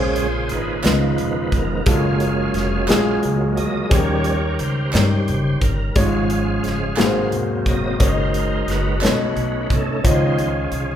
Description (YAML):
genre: slow gospel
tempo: 59 BPM (dotted quarters)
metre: 6/8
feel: straight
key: Db major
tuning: A4 = 440 Hz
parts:
  - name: warm grand piano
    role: accompaniment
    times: 0.0-11.0 s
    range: Ab2 to Eb5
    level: -22 LUFS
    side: left 2 dB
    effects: none
  - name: tonewheel organ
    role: sustained chords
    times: 0.0-11.0 s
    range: Db3 to F5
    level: -23 LUFS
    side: right 2 dB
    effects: slow rotary speaker, overdrive, chorus vibrato
  - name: upright bass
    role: bass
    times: 0.0-11.0 s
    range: Fb1 to G2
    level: -23 LUFS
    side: equal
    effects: none
  - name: modern studio drum kit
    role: drums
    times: 0.2-10.9 s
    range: hi-hat, kick drum, snare drum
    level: -21 LUFS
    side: equal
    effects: none
  - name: group handclap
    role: percussion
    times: 0.8-9.3 s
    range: none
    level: -32 LUFS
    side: right 4 dB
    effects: none
room: moderate large studio reverb, RT60 1.4 s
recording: band playing live in one room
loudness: -17 LUFS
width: side -10 dB against mid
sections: 0.0-11.0 A section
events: tonewheel organ solo 0.0-11.0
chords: 0.0 Bbm9; 0.8 Db13; 1.9 Gbmaj9; 3.9 Eb7; 6.0 Db/Ab; 7.0 Ab9; 8.0 Gb6; 9.0 Cb9; 10.0 Dbmaj9